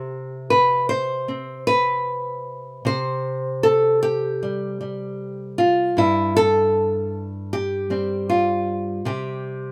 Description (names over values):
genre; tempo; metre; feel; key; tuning
folk, solo fingerstyle acoustic guitar; 77 BPM; 4/4; rubato; unclear; A4 = 440 Hz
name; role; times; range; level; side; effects
nylon-string guitar; solo; 0.0-9.7 s; G2 to C5; -22 LUFS; equal; none
room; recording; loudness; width
light reverb; none; -22 LUFS; mono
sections
0.0-9.7 A section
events
none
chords
0.0 C5; 6.0 G7sus4; 9.0 C5